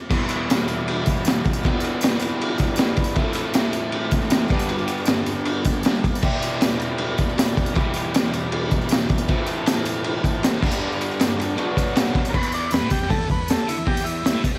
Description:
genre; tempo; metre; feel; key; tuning
garage rock duo or trio; 157 BPM; 4/4; straight; E minor; A4 = 440 Hz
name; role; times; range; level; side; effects
crunchy overdriven guitar; riff; 0.1-14.6 s; E2 to A4; -27 LUFS; equal; cassette tape
crunchy breakbeat drum kit; drums; 0.1-14.6 s; crash cymbal, hi-hat, kick drum, ride cymbal, snare drum; -23 LUFS; equal; cassette tape
tambourine; percussion; 0.1-14.5 s; none; -39 LUFS; equal; none
overdriven combo organ; melody; 12.3-14.4 s; E4 to D5; -29 LUFS; equal; cassette tape
room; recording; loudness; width
small room ambience; home recording on cassette; -22 LUFS; mono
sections
0.1-12.3 A section; 12.3-14.6 B section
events
transistor combo organ solo 12.3-14.6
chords
0.1 Em; 3.2 Am; 4.5 G; 6.2 Em; 9.3 Am; 10.6 G; 11.6 Bm; 12.3 Em

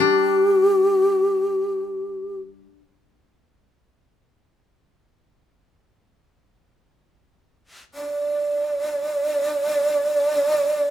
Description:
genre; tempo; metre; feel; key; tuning
japanese traditional, Japanese chamber music; free time; none; none; unclear; A4 = 440 Hz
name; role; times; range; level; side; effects
breathy mellow long shakuhachi; melody; 0.0-2.4, 7.9-10.9 s; G4 to D5; -19 LUFS; equal; none
koto; accompaniment; 0.0-2.8 s; G3 to D4; -25 LUFS; left 7 dB; none
room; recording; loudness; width
moderate studio reverb, RT60 0.7 s; minimal, uncompressed stereo recording; -19 LUFS; side -10 dB against mid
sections
0.0-6.0 A section; 6.0-10.9 A section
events
none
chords
none

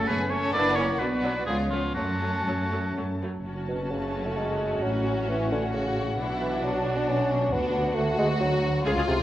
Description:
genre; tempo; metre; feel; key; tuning
classical; 132 BPM; 3/4; rubato; F# minor; A4 = 444 Hz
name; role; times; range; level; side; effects
dark symphonic violin section; melody; 0.0-9.1 s; C#5 to A5; -36 LUFS; left 2 dB; none
bright oboe; second line; 0.0-2.9 s; E#4 to D5; -29 LUFS; right 1 dB; none
clear symphonic violin section; second line; 0.0-9.2 s; A3 to B4; -32 LUFS; left 2 dB; none
mellow French horn section; sustained chords; 0.0-3.2 s; A3 to E4; -34 LUFS; left 1 dB; none
rich symphonic cello section; bass; 0.0-9.2 s; Db2 to D4; -33 LUFS; right 1 dB; none
warm chamber double bass section; bass; 0.0-9.1 s; F#1 to F#2; -31 LUFS; right 1 dB; none
bright symphonic viola section; accompaniment; 0.1-9.2 s; E#3 to Ab4; -34 LUFS; right 1 dB; none
dark bassoon; accompaniment; 3.7-9.2 s; B2 to D4; -28 LUFS; equal; none
room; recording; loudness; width
wet recital hall reverb, RT60 1.5 s; worn, warbling old tape, cassette tape, warbly pitch drift; -24 LUFS; side -13 dB against mid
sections
0.0-3.5 A section; 3.5-9.2 B section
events
none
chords
0.0 F#m; 0.5 F#7; 1.0 Bm; 1.5 C#7; 2.0 F#m; 4.8 F#m/A; 6.2 Bm; 7.5 Bm/D

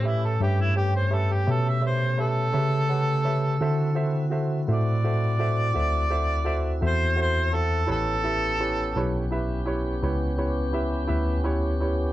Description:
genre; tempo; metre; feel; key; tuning
blues; 56 BPM (dotted quarters); 12/8; straight; A mixolydian; A4 = 440 Hz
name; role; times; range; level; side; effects
mellow harmonica; melody; 0.0-9.3 s; E4 to E5; -27 LUFS; equal; overdrive
warm grand piano; accompaniment; 0.0-12.1 s; E4 to G5; -30 LUFS; right 2 dB; none
tonewheel organ; sustained chords; 0.0-12.1 s; A3 to G4; -34 LUFS; left 1 dB; slow rotary speaker
mellow tine electric piano; bass; 0.0-12.1 s; A1 to D3; -24 LUFS; equal; medium stereo tremolo
room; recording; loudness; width
little or no reverb; dark, warm production; -22 LUFS; side -15 dB against mid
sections
0.0-12.1 A section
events
harmonica solo 0.0-12.1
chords
0.0 A9; 3.6 D9; 7.9 A9

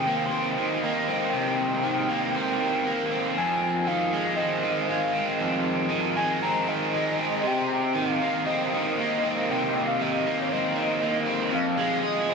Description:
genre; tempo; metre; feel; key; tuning
rock; 118 BPM; 4/4; straight; F minor; A4 = 440 Hz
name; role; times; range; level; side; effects
pure sine lead; melody; 0.0-12.3 s; Db5 to C6; -28 LUFS; left 1 dB; chorus, analog delay
overdriven electric guitar; riff; 0.0-12.3 s; F2 to Ab4; -24 LUFS; right 1 dB; lush chorus
room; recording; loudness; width
wet huge ambient reverb, RT60 6.8 s; dreamy mix soaked in reverb; -23 LUFS; side -5 dB against mid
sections
0.0-11.5 A section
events
none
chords
0.0 Cm7; 3.4 Fm7; 7.4 Cm7; 11.5 Fm7

